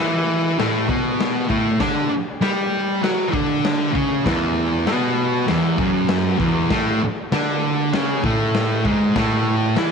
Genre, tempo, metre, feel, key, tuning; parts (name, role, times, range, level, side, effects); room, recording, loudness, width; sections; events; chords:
garage rock duo or trio; 98 BPM; 4/4; straight; A4 = 441 Hz
thick fuzz guitar; riff; 0.0-9.9 s; E2 to G4; -18 LUFS; right 1 dB; distortion
raw garage drum kit; drums; 0.6-9.9 s; crash cymbal, kick drum, snare drum; -25 LUFS; left 3 dB
moderate echo chamber reverb, RT60 2.4 s; 1960s-style stereo; -17 LUFS; side -5 dB against mid
0.0-9.9 A section
0.0 A5; 4.3 E5; 9.2 A5